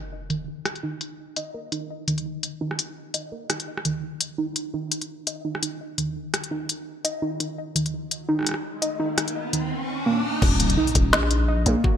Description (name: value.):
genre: half-time drum and bass.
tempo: 169 BPM.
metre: 4/4.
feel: swing 56% on 16ths, half-time.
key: unclear.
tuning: A4 = 440 Hz.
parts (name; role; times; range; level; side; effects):
warbly dusty pluck; arpeggios; 0.0-12.0 s; Eb3 to Eb5; -28 LUFS; right 2 dB; chorus, cassette tape, ping-pong delay.
sub drop, riser and impact; sound effects; 0.0-0.5, 8.8-11.8 s; none; -29 LUFS; equal; none.
organic electronic drum kit; drums; 0.3-11.7 s; crash cymbal, hi-hat, rim click, snare drum; -24 LUFS; left 2 dB; low-pass filter on snare, low-pass filter on hats, low-pass filter on toms, low-pass filter on cymbals, low-pass filter on room.
growling 808-style bass; bass; 10.4-11.8 s; Eb1 to Bb1; -22 LUFS; equal; none.
electronic kick drum; drums; 10.4-11.9 s; none; -20 LUFS; equal; none.
room: moderate lush hall reverb, RT60 1.9 s.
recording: bright 1980s-style digital production.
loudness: -23 LUFS.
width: side -9 dB against mid.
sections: 0.0-10.4 A section; 10.4-12.0 B section.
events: impact 0.0-0.5, 10.4-11.8; filter sweep on synth pluck 0.0-10.4; riser 8.8-10.4; drop 10.4-12.0.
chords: 0.0 Eb5; 10.4 Ebm.